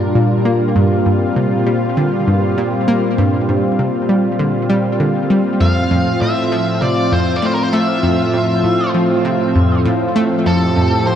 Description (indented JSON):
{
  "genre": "ambient, sequencer-driven space music",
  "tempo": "99 BPM",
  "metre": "4/4",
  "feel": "straight",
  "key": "G dorian",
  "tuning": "A4 = 440 Hz",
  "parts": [
    { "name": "lush unison pad", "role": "sustained chords", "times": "0.0-11.2 s", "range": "A2 to G4", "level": "-16 LUFS", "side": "equal", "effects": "chorus" },
    { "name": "analog pluck", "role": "riff", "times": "0.0-11.2 s", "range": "F2 to Bb3", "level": "-17 LUFS", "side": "equal", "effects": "chorus, cassette tape, tape echo" },
    { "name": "smooth overdriven lead guitar", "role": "melody", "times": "5.6-11.2 s", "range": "A4 to F5", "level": "-22 LUFS", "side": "equal", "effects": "tape echo" }
  ],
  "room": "moderate plate reverb, RT60 2.5 s",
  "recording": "dark, warm production",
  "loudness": "-13 LUFS",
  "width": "side -9 dB against mid",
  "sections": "0.0-11.2 A section",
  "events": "none",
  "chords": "0.0 Gm7; 5.6 Fmaj7",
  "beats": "0.15 | 0.76 1.37 1.97 2.58 | 3.19 3.79 4.40 5.00 | 5.61 6.22 6.82 7.43 | 8.03 8.64 9.25 9.85 | 10.46 11.06"
}